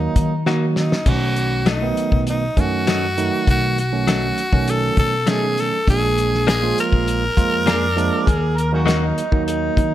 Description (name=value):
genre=straight-eighth soul blues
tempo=100 BPM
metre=4/4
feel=straight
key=unclear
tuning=A4 = 443 Hz
part: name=overdriven harmonica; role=second line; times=0.0-0.6, 7.7-9.9 s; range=Db4 to D5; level=-25 LUFS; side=right 2 dB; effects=analog delay
part: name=overdriven tine electric piano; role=accompaniment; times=0.0-9.9 s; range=Eb3 to Gb4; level=-23 LUFS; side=right 6 dB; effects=none
part: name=upright bass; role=bass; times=0.0-9.9 s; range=Bb1 to Eb3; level=-22 LUFS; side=left 1 dB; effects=none
part: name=cloth-damped thuddy drum kit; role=drums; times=0.2-9.9 s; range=crash cymbal, hi-hat, kick drum, snare drum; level=-21 LUFS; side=left 1 dB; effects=none
part: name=direct-recorded clean electric guitar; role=stabs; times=0.5-9.1 s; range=F3 to Ab4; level=-26 LUFS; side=left 5 dB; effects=none
part: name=raspy tenor saxophone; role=melody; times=0.8-9.1 s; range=Eb4 to Bb4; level=-21 LUFS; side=left 1 dB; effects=none
room=light reverb, small room reverb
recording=none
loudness=-16 LUFS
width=side -12 dB against mid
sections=0.0-9.9 A section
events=drum fill 0.5-1.1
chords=0.0 Ebm; 1.1 B7; 5.9 Bb7; 8.3 Ebm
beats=0.46 | 1.06 1.66 2.27 2.87 | 3.47 4.07 4.67 5.27 | 5.87 6.47 7.07 7.67 | 8.27 8.87 9.47